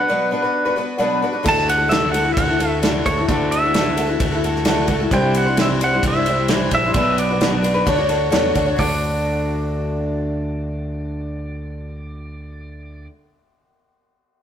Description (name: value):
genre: folk rock and heartland rock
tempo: 131 BPM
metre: 4/4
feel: straight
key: D major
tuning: A4 = 442 Hz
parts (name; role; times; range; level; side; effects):
- pedal steel guitar; melody; 0.0-13.1 s; C#5 to A5; -21 LUFS; right 1 dB; none
- picked twelve-string acoustic guitar; accompaniment; 0.0-13.1 s; B2 to C#5; -20 LUFS; left 1 dB; none
- fingered electric bass; bass; 1.5-13.1 s; Bb1 to E2; -24 LUFS; right 1 dB; none
- natural country drum kit; drums; 1.5-8.9 s; crash cymbal, hi-hat, kick drum, ride cymbal, snare drum; -22 LUFS; equal; none
room: moderate stone room reverb, RT60 1.0 s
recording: rough rehearsal-room recording, warm saturation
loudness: -16 LUFS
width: side -9 dB against mid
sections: 0.0-8.8 A section; 8.8-12.5 B section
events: none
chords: 0.0 Bm; 1.5 Dadd9; 5.1 Cadd9; 7.0 Bm; 7.9 Dmaj7; 8.8 D